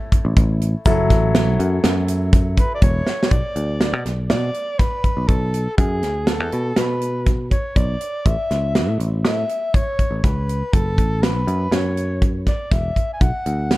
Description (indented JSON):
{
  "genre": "progressive instrumental, band music in an uneven meter",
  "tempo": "121 BPM",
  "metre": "5/4",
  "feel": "straight",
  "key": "B dorian",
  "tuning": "A4 = 440 Hz",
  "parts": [
    { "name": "clear baby grand piano", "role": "accompaniment", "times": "0.0-3.3 s", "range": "F#3 to C#5", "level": "-24 LUFS", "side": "left 1 dB", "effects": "none" },
    { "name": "tight funk drum kit", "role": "drums", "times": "0.1-13.8 s", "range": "hi-hat, kick drum, snare drum", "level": "-18 LUFS", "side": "equal", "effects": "none" },
    { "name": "picked electric bass", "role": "bass", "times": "0.2-13.8 s", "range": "E1 to B2", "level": "-21 LUFS", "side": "equal", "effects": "none" },
    { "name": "egg shaker", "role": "percussion", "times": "0.9-3.2 s", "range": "none", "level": "-45 LUFS", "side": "right 3 dB", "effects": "none" },
    { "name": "breathy soprano saxophone", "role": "melody", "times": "2.6-13.8 s", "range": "G#4 to G#5", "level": "-25 LUFS", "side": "equal", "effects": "tape echo" }
  ],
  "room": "light reverb, studio ambience",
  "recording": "dark, warm production",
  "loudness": "-17 LUFS",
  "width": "side -18 dB against mid",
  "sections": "0.0-3.3 A section; 3.3-13.8 B section",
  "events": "drum fill 3.1",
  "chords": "0.0 A; 0.9 F#m7; 3.3 Bm; 8.3 A; 10.7 F#m; 13.2 Bm"
}